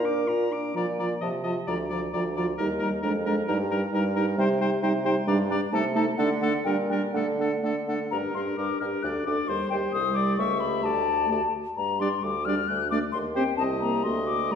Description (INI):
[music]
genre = quick classical-period movement for wind quintet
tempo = 132 BPM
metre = 2/4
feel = rubato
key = Bb major, G minor from 4.4 s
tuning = A4 = 444 Hz
[part]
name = hollow concert flute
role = melody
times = 0.0-14.6 s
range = Bb4 to F#6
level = -30 LUFS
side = left 7 dB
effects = none
[part]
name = bright oboe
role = second line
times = 0.0-14.5 s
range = A4 to D6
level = -34 LUFS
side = left 3 dB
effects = none
[part]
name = dark French horn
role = accompaniment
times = 0.0-14.6 s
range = F3 to F4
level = -30 LUFS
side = equal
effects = none
[part]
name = warm clarinet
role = accompaniment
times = 0.0-14.6 s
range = D4 to Bb4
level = -31 LUFS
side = right 4 dB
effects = none
[part]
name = warm bassoon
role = bass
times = 0.0-14.6 s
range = C2 to D3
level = -30 LUFS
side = right 2 dB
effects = none
[sound]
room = wet recital hall reverb, RT60 1.6 s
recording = heard from further back in the room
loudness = -24 LUFS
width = side -7 dB against mid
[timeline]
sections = 0.8-8.1 A section; 8.1-14.6 B section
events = none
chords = 0.0 Bb; 1.2 F7(no3)/C; 1.7 Bb/D (rootless); 2.6 Eb; 3.0 Bb7/F; 3.5 Eb/G; 4.4 Cm; 5.3 G5; 5.7 Adim/C; 6.2 D5; 6.7 Gm/Bb; 7.1 D5; 8.1 Gm; 9.0 D5; 9.5 Cm/Eb; 9.9 Cm; 10.4 A7/C#; 10.8 Dsus4; 11.3 D; 11.8 G5; 12.7 D; 13.1 Cm/Eb; 13.6 Cm; 14.0 D7b9